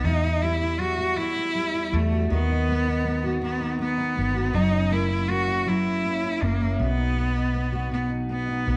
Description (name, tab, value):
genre	six-eight pop ballad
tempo	53 BPM (dotted quarters)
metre	6/8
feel	straight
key	E harmonic minor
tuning	A4 = 442 Hz
part	clear cello	melody	0.0-8.8 s	A3 to F#4	-28 LUFS	equal	none
part	fingerpicked steel-string acoustic guitar	accompaniment	0.0-8.8 s	E2 to F#4	-30 LUFS	equal	double-tracked
part	vintage muted fingered electric bass	bass	0.0-8.8 s	F#1 to E2	-29 LUFS	equal	none
room	moderate echo chamber reverb, RT60 1.5 s, small room ambience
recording	none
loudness	-25 LUFS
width	mono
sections	0.0-8.8 A section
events	none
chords	0.0 Emadd9; 2.3 B/D#; 4.5 F#7; 6.8 B